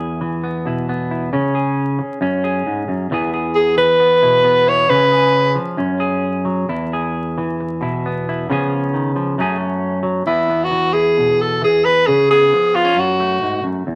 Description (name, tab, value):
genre	highlife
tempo	134 BPM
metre	4/4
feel	swing 54% on 16ths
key	E major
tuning	A4 = 441 Hz
part	semi-hollow electric guitar	accompaniment	0.0-14.0 s	E2 to G#4	-22 LUFS	equal	none
part	bright alto saxophone	melody	3.6-5.6, 10.3-13.7 s	E4 to C#5	-15 LUFS	equal	none
room	moderate studio reverb, RT60 0.8 s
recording	vinyl crackle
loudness	-17 LUFS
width	mono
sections	0.0-10.3 A section; 10.3-14.0 B section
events	none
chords	0.0 E; 1.3 C#5; 2.2 F#sus2; 3.1 E; 4.9 C#7; 5.8 F#sus2; 6.7 E; 8.5 C#7; 9.4 F#madd9; 10.3 E; 12.1 C#7; 13.0 F#madd9